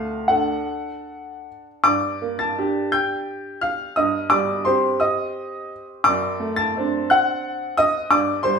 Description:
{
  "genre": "classical, piano waltz",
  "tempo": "150-190 BPM",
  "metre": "3/4",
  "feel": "rubato",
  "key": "unclear",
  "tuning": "A4 = 442 Hz",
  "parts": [
    { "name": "bright upright piano", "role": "solo", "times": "0.0-8.6 s", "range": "D2 to A6", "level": "-19 LUFS", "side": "equal", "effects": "none" }
  ],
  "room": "wet large studio reverb, RT60 0.8 s",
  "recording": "heard from further back in the room",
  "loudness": "-19 LUFS",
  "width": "side -6 dB against mid",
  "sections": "0.0-1.9 A section; 1.9-8.6 A section",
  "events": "none",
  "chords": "0.0 D; 1.9 Gm; 4.0 Cm/G; 6.1 D7/F#",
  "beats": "0.29 | 0.68 1.07 1.47 | 1.85 2.22 2.58 | 2.93 3.28 3.62 | 3.97 4.31 4.66 | 5.01 5.36 5.71 | 6.05 6.39 6.76 | 7.11 7.44 7.78 | 8.11 8.44"
}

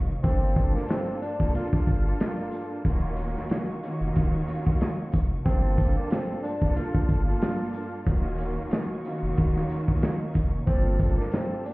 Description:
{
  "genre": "hip hop, boom-bap hip-hop",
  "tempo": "92 BPM",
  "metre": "4/4",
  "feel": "swing 55% on 16ths",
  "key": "G minor",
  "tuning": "A4 = 442 Hz",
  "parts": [
    { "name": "warm symphonic string section", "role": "accompaniment", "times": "0.0-11.7 s", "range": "G2 to A4", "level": "-31 LUFS", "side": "right 1 dB", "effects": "cassette tape, high-pass filter, low-pass filter" },
    { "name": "warm studio string section", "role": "sustained chords", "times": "0.0-11.7 s", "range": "Gb3 to Db6", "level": "-42 LUFS", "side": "equal", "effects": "high-pass filter, low-pass filter" },
    { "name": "sub bass with octave", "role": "bass", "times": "0.0-11.2 s", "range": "Eb1 to G1", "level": "-26 LUFS", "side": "equal", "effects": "none" },
    { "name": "breathy tenor saxophone", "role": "melody", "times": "0.2-11.7 s", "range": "Bb3 to F4", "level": "-33 LUFS", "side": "equal", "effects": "high-pass filter, low-pass filter, tape echo" },
    { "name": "crunchy breakbeat drum kit", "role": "drums", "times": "0.2-11.7 s", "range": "hi-hat, kick drum, rim click, snare drum", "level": "-26 LUFS", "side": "equal", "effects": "none" },
    { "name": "tambourine", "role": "percussion", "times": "0.6-11.7 s", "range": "none", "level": "-68 LUFS", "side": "left 4 dB", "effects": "none" }
  ],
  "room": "little or no reverb",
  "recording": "heard muffled through a wall, stone room reverb, EQ",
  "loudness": "-23 LUFS",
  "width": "side -22 dB against mid",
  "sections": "0.0-11.7 A section",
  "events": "none",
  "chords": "0.2 Gm9; 2.9 Ebm9; 5.5 Gm9; 8.1 Ebm9; 10.7 Gm9",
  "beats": "| 0.24 0.89 1.54 2.20 | 2.85 3.50 4.15 4.81 | 5.46 6.11 6.76 7.42 | 8.07 8.72 9.37 10.02 | 10.68 11.33"
}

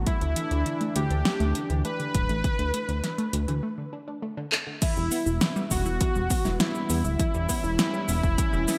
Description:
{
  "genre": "synthwave",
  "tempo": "101 BPM",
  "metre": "4/4",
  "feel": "straight",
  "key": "E dorian",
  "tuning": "A4 = 440 Hz",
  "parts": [
    { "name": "chorused pulse-width pad", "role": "sustained chords", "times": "0.0-8.8 s", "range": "E3 to D4", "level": "-38 LUFS", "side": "equal", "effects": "sidechain pumping" },
    { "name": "unison pluck", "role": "arpeggios", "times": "0.0-8.8 s", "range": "D3 to A4", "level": "-36 LUFS", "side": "equal", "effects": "delay" },
    { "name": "chorused synth bass", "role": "bass", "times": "0.0-8.7 s", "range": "D1 to E2", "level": "-29 LUFS", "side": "equal", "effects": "tube saturation" },
    { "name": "soft supersaw", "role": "melody", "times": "0.1-8.8 s", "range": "E4 to B4", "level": "-33 LUFS", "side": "equal", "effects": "delay" },
    { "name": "electronic kick drum", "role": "drums", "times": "0.1-8.5 s", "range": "none", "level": "-29 LUFS", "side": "equal", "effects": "overdrive" },
    { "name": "pop drum kit", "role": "drums", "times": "0.1-8.8 s", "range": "crash cymbal, handclaps, hi-hat, shaker, snare drum", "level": "-31 LUFS", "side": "equal", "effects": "overdrive, gated reverb" }
  ],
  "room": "light reverb",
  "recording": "bright 1980s-style digital production",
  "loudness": "-26 LUFS",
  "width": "mono",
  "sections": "0.0-4.8 A section; 4.8-8.8 B section",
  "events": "break 3.6-4.8; drum fill 4.5",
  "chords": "0.1 Dsus2; 4.8 Em",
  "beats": "| 0.07 0.66 1.25 1.85 | 2.44 3.04 3.63 4.22 | 4.82 5.41 6.01 6.60 | 7.20 7.79 8.38"
}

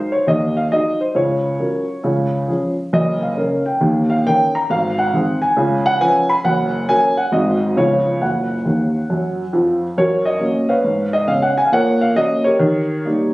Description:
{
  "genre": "jazz, stride piano",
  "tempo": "136 BPM",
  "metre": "4/4",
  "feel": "swing 65% on 8ths",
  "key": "F# major",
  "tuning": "A4 = 440 Hz",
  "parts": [
    { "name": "warm upright piano", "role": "solo", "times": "0.0-13.3 s", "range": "F#1 to B5", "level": "-15 LUFS", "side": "equal", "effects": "none" }
  ],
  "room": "moderate studio reverb, RT60 0.6 s",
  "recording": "recorded on a phone in the room, studio reverb",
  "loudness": "-15 LUFS",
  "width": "side -19 dB against mid",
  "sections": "0.0-10.0 A section; 10.0-13.3 A section",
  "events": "upright piano fill 8.6-10.0",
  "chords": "0.0 G#7; 1.2 F#/C#; 2.0 C#; 2.9 F#; 3.8 D#5; 4.7 G#7; 5.6 C#7; 6.4 F#; 7.3 G#7; 7.8 C#7; 8.2 D#madd9/F#; 10.0 F#; 10.8 C#5/G#; 11.7 F#/A#; 12.6 D#7",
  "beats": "0.28 0.72 | 1.16 1.60 2.04 2.48 | 2.92 3.36 3.80 4.24 | 4.68 5.12 5.57 6.01 | 6.45 6.89 7.33 7.77 | 8.21 8.65 9.09 9.53 | 9.97 10.41 10.85 11.29 | 11.73 12.17 12.61 13.05"
}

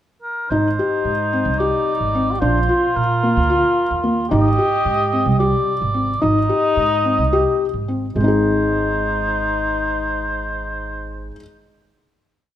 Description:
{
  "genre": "contemporary instrumental, chamber music in an uneven meter",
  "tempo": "219 BPM (eighths)",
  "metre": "7/8",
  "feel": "straight",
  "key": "Ab lydian",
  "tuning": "A4 = 441 Hz",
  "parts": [
    { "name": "mellow oboe", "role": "melody", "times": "0.2-11.3 s", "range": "Bb4 to Eb5", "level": "-22 LUFS", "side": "right 2 dB", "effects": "none" },
    { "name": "French horn with straight mute", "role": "second line", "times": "0.5-11.3 s", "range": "Eb4 to G4", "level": "-23 LUFS", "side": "left 2 dB", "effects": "none" },
    { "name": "felt-muted upright piano", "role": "arpeggios", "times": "0.5-11.4 s", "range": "Ab3 to Ab4", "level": "-21 LUFS", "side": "left 2 dB", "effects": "none" },
    { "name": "upright bass", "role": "bass", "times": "0.5-11.3 s", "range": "Ab1 to Bb2", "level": "-22 LUFS", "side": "right 2 dB", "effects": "none" }
  ],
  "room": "moderate recital hall reverb, RT60 1.6 s",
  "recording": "none",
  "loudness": "-16 LUFS",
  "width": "side -11 dB against mid",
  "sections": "0.0-0.5 pickup bar; 0.5-8.2 A section; 8.2-12.1 final chord",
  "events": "none",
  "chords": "0.0 N.C.; 0.5 Abmaj7; 2.4 Bb; 4.3 Abmaj7; 8.2 Ab",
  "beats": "0.23 | 0.51 0.78 1.05 1.32 1.59 1.87 2.14 | 2.41 2.68 2.95 3.22 3.50 3.77 4.04 | 4.31 4.58 4.86 5.13 5.40 5.68 5.95 | 6.22 6.50 6.78 7.05 7.33 7.61 7.88 | 8.16 8.44 8.72 9.00 9.28 9.56 9.84 | 10.12 10.40 10.68 10.96 11.24"
}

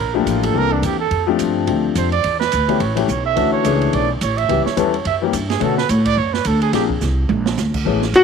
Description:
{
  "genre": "jazz, small-group swing and bop",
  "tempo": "213 BPM",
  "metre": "4/4",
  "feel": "swing 59% on 8ths",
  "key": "unclear",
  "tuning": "A4 = 440 Hz",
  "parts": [
    { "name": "mellow trumpet", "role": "second line", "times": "0.0-6.8 s", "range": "D4 to E5", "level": "-21 LUFS", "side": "right 11 dB", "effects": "none" },
    { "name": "upright bass", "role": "bass", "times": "0.0-8.2 s", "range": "G#1 to B2", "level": "-21 LUFS", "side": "right 1 dB", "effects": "none" },
    { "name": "warm baby grand piano", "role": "accompaniment", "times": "0.1-8.0 s", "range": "D3 to A4", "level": "-19 LUFS", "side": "left 11 dB", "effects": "none" },
    { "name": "open jazz drum kit", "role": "drums", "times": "0.3-8.2 s", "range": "crash cymbal, hi-hat, kick drum, ride cymbal, snare drum, toms", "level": "-26 LUFS", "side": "right 8 dB", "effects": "none" },
    { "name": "archtop guitar, miked and amplified", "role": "melody", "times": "8.2 s", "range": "F#4", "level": "-7 LUFS", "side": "left 2 dB", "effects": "none" }
  ],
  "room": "moderate plate reverb, RT60 2.0 s, small room ambience",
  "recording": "1960s-style stereo with parts hard left and right",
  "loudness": "-15 LUFS",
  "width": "side -6 dB against mid",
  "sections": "0.0-7.9 A section",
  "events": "trumpet solo 0.0-7.9; drum fill 7.0-7.6",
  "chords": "0.0 Gm9; 0.5 C13; 1.1 F69; 2.2 Em7; 2.8 A9; 3.4 Dmaj9; 4.5 C#m7b5; 5.0 F#7b9; 5.6 Bm9; 6.7 Bb9",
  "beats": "0.27 0.55 0.83 | 1.11 1.39 1.67 1.95 | 2.23 2.52 2.80 3.08 | 3.36 3.64 3.92 4.20 | 4.49 4.77 5.05 5.33 | 5.61 5.89 6.17 6.45 | 6.73 7.01 7.30 7.58 | 7.86 8.14"
}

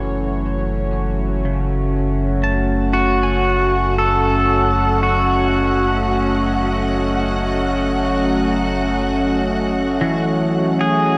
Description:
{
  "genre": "ambient",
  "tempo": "57 BPM",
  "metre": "4/4",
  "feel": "straight",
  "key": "F# dorian",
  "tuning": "A4 = 440 Hz",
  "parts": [
    { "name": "warm analog pad", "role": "sustained chords", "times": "0.0-11.2 s", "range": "F#3 to D#5", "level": "-23 LUFS", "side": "equal", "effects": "chorus, shimmer reverb" },
    { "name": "clean electric guitar", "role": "arpeggios", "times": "0.0-11.2 s", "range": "C#3 to A5", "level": "-27 LUFS", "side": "equal", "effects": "shimmer reverb, tape echo" },
    { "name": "deep rumbling drone", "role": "bass", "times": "0.0-11.2 s", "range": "F#1", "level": "-25 LUFS", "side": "equal", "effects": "built-in reverb" },
    { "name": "overtone-sweeping drone", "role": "drone", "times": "0.0-11.2 s", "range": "F#3 to C#4", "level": "-30 LUFS", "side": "equal", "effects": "chorus, built-in reverb" },
    { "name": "pedal steel guitar", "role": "melody", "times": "2.9-11.2 s", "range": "F#4 to A4", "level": "-22 LUFS", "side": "equal", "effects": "shimmer reverb, tape echo" },
    { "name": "rich studio violin section", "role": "texture", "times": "2.9-11.2 s", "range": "F#5 to F#6", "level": "-31 LUFS", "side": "equal", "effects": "shimmer reverb" }
  ],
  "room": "wet huge ambient reverb, RT60 8.9 s",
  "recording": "cassette tape, nothing above 10.9 kHz",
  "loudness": "-18 LUFS",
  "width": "mono",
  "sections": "0.0-11.2 A section",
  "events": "fade-in on clean electric guitar 0.0-11.2; fade-in on synth drone 0.0-11.2",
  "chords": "0.0 F#m",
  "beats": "0.80 1.85 | 2.90 3.96 5.01 6.06 | 7.12 8.17 9.22 10.27"
}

